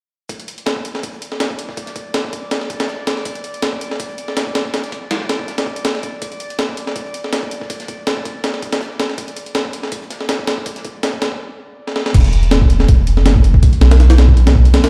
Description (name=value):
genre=drum and bass, jungle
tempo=162 BPM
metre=4/4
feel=swing 54% on 16ths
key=unclear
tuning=A4 = 438 Hz
part: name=breakbeat sampler-style drum kit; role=drums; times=0.3-14.9 s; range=crash cymbal, hi-hat, kick drum, snare drum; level=-19 LUFS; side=equal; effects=high-pass filter on kick, studio reverb, high-pass filter on hats, high-pass filter on snare, high-pass filter on cymbals
part: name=crunchy breakbeat drum kit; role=drums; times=0.3-11.3 s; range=hi-hat, shaker, snare drum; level=-38 LUFS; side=equal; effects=none
part: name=drifting glass-harmonics texture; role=texture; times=0.9-11.4 s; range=D5 to D6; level=-35 LUFS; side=equal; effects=chorus, built-in reverb
part: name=soft dub sub bass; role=bass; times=12.1-14.7 s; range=E1 to B1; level=-12 LUFS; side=equal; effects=none
room=studio reverb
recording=played on a big sound system in a bare room, large studio reverb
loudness=-16 LUFS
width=mono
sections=0.3-12.1 A section; 12.1-14.9 B section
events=drum fill 11.9; drop 12.1-14.9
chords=0.3 N.C.; 12.1 Esus2